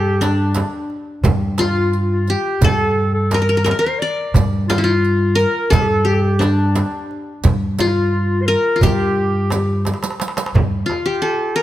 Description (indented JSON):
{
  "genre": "Turkish makam ensemble",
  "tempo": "174 BPM (eighths)",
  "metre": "9/8",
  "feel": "straight",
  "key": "G makam huseyni",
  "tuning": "A4 = 440 Hz",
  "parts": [
    { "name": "qanun", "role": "melody", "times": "0.0-11.6 s", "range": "D4 to D5", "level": "-19 LUFS", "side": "left 1 dB", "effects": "none" },
    { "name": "mellow clarinet", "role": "second line", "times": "0.0-10.2 s", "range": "D4 to D5", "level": "-23 LUFS", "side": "left 1 dB", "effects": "none" },
    { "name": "upright bass", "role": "bass", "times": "0.0-10.8 s", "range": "G2", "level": "-18 LUFS", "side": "equal", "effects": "none" },
    { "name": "darbuka", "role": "percussion", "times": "0.2-11.3 s", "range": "none", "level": "-21 LUFS", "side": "right 2 dB", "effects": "none" },
    { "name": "frame drum", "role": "percussion", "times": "0.2-11.1 s", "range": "none", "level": "-22 LUFS", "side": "right 2 dB", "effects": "none" },
    { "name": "riq", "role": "percussion", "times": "0.2-10.5 s", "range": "none", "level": "-30 LUFS", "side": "right 5 dB", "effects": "none" }
  ],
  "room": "light reverb",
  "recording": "close, detailed microphones",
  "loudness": "-15 LUFS",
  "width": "side -13 dB against mid",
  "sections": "0.0-10.6 A section; 10.6-11.6 B section",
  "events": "drum fill 9.9-10.6",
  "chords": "none"
}